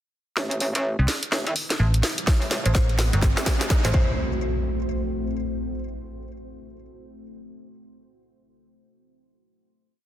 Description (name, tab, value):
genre	bass house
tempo	126 BPM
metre	4/4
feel	swing 62% on 16ths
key	A dorian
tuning	A4 = 441 Hz
part	deep dark ambient pad	sustained chords	1.6-4.2 s	A3 to C5	-33 LUFS	left 2 dB	chorus, built-in reverb, sidechain pumping
part	metallic wobble bass	bass	0.4-4.2 s	A1 to C2	-26 LUFS	equal	chorus, tube saturation, sidechain pumping, high-pass filter
part	house drum kit	drums	0.4-3.9 s	hi-hat, snare drum	-26 LUFS	equal	none
part	riser and impact	sound effects	1.5-5.8 s	none	-32 LUFS	equal	none
part	metallic FM bass	bass	1.0-3.9 s	G1 to C2	-21 LUFS	equal	overdrive, sidechain pumping
part	electronic kick drum	drums	2.3-4.1 s	none	-21 LUFS	equal	none
part	mallet-like synth pluck	melody	2.7-4.0 s	C5	-34 LUFS	right 1 dB	chorus, digital delay
room	light reverb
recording	dense, heavily limited modern master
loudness	-21 LUFS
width	side -12 dB against mid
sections	0.4-4.2 build; 4.2-6.1 final hit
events	build-up 0.4-4.2; drum fill 0.4-4.2; riser 1.5-4.2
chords	0.4 Am; 4.2 N.C.